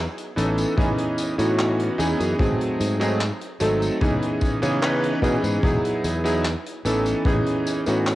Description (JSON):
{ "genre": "vaporwave", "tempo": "74 BPM", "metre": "4/4", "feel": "straight", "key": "unclear", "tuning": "A4 = 438 Hz", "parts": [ { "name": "sustaining fretless electric bass", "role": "bass", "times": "0.0-8.2 s", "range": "E1 to C#3", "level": "-25 LUFS", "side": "equal", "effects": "none" }, { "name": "swinging big-band drum kit", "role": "drums", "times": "0.2-8.2 s", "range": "handclaps, hi-hat, tambourine", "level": "-32 LUFS", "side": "left 1 dB", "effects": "cassette tape" }, { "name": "bright electric grand piano", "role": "accompaniment", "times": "0.4-8.2 s", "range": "E3 to B4", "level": "-22 LUFS", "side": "right 1 dB", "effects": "lush chorus, vintage 12-bit sampler grit, cassette tape, tape echo" }, { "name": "kick drum", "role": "drums", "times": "0.8-7.4 s", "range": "none", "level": "-25 LUFS", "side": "equal", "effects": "cassette tape" } ], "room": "small room ambience", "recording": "home recording on cassette", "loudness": "-20 LUFS", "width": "side -16 dB against mid", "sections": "0.0-8.2 A section", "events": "none", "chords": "0.4 Amaj9#11; 2.4 G#7b9; 4.0 C#m9; 5.6 Emaj9; 6.9 Amaj9#11" }